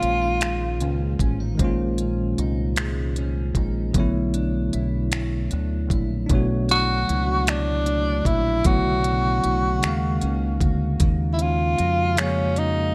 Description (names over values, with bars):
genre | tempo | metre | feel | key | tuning
slow six-eight R&B | 51 BPM (dotted quarters) | 6/8 | straight | unclear | A4 = 441 Hz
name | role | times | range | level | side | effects
breathy tenor saxophone | melody | 0.0-1.2, 6.7-12.9 s | Db4 to F#4 | -25 LUFS | equal | none
clean electric guitar | second line | 0.0-12.9 s | Bb2 to Gb4 | -34 LUFS | equal | analog chorus
bell-like tine electric piano | accompaniment | 0.0-12.9 s | C#3 to F5 | -29 LUFS | equal | none
deep dub fingered electric bass | bass | 0.0-12.9 s | A1 to F2 | -27 LUFS | equal | none
smooth R&B drum kit | drums | 0.0-12.7 s | finger snaps, hi-hat, kick drum | -26 LUFS | equal | none
room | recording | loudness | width
light reverb, digital ambience | none | -22 LUFS | mono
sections
0.0-12.9 A section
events
none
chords
0.0 Bbm11; 3.9 Bm11; 9.8 Ebm11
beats
0.41 | 1.59 2.77 | 3.94 5.12 | 6.29 7.47 | 8.65 9.82 | 11.00 12.18